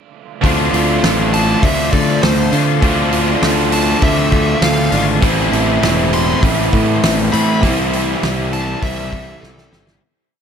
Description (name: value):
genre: rock, shoegaze and dream pop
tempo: 100 BPM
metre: 4/4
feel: straight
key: unclear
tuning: A4 = 436 Hz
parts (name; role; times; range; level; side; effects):
- electric guitar through a small old amp; arpeggios; 0.4-10.0 s; G3 to B4; -25 LUFS; left 2 dB; lush chorus, analog delay
- overdriven electric guitar; riff; 0.4-10.0 s; A2 to F4; -19 LUFS; left 11 dB; analog chorus
- overdriven electric guitar; riff; 0.4-10.0 s; A2 to F4; -19 LUFS; right 10 dB; reverse reverb
- fuzz fingered electric bass; bass; 0.4-10.0 s; E1 to D3; -18 LUFS; equal; overdrive
- loose indie drum kit; drums; 0.4-10.0 s; hi-hat, kick drum, snare drum; -19 LUFS; equal; none
- bluesy overdriven lead guitar; melody; 1.3-9.8 s; A4 to C6; -23 LUFS; left 1 dB; distortion, analog delay
room: light reverb, studio reverb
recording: none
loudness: -12 LUFS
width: side -7 dB against mid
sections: 0.4-10.0 verse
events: fade-out 7.6-10.0; drum fill 9.4-10.0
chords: 0.4 Dm7; 5.2 Amadd9; 7.6 C6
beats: | 0.43 1.03 1.63 2.23 | 2.82 3.42 4.02 4.62 | 5.22 5.82 6.42 7.02 | 7.62 8.22 8.82 9.42